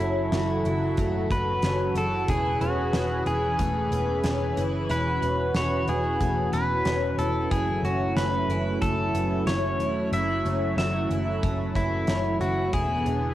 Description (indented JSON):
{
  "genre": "dream pop",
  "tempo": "92 BPM",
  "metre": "4/4",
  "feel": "straight",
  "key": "F# minor",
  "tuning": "A4 = 439 Hz",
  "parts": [
    { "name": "pedal steel guitar", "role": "melody", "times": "0.0-13.3 s", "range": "E4 to E5", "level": "-28 LUFS", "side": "equal", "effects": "cassette tape, analog delay" },
    { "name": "warm analog pad", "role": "sustained chords", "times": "0.0-13.3 s", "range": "C#3 to B4", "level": "-29 LUFS", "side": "right 1 dB", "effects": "chorus, cassette tape" },
    { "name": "picked twelve-string acoustic guitar", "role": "arpeggios", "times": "0.0-13.3 s", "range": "A3 to F#4", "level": "-33 LUFS", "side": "left 2 dB", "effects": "wide subtle chorus, cassette tape, analog delay" },
    { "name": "vintage muted picked electric bass", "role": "bass", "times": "0.0-13.3 s", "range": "E1 to F#1", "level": "-29 LUFS", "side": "equal", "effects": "none" },
    { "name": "huge arena drum kit", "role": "drums", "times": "0.0-13.2 s", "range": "hi-hat, kick drum, snare drum", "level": "-32 LUFS", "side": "equal", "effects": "none" }
  ],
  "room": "moderate spring reverb, RT60 2.6 s",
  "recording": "home recording on cassette",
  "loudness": "-23 LUFS",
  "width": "side -13 dB against mid",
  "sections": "0.0-13.3 A section",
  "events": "none",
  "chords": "0.0 F#m7; 2.3 C#m7/E; 7.5 F#m7; 12.7 E7"
}